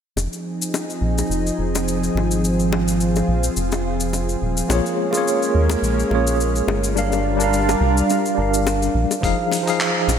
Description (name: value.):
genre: sunset chillout.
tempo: 106 BPM.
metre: 4/4.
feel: swing 54% on 16ths.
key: F minor.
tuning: A4 = 439 Hz.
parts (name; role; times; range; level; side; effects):
lush unison pad; sustained chords; 0.2-9.2 s; F3 to Bb4; -22 LUFS; right 1 dB; chorus, vintage 12-bit sampler grit.
round analog bass; bass; 0.2-10.2 s; Eb1 to Eb2; -22 LUFS; equal; tube saturation.
dusty soul sampler-style drum kit; drums; 0.2-10.2 s; handclaps, hi-hat, shaker; -27 LUFS; left 3 dB; gated reverb.
bongos; percussion; 0.2-10.2 s; none; -29 LUFS; left 5 dB; none.
barky tine electric piano; accompaniment; 4.7-10.2 s; F3 to F5; -20 LUFS; moving between left 4 dB and right 5 dB; medium stereo tremolo, auto-pan, digital delay.
electronic kick drum; drums; 9.2-9.4 s; none; -24 LUFS; equal; none.
room: moderate lush hall reverb, RT60 2.2 s.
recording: bright 1980s-style digital production.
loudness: -17 LUFS.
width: side -8 dB against mid.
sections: 0.2-9.2 A section.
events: none.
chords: 0.2 Fm7; 4.7 Bbm7; 7.0 Gm7; 9.2 Fm7.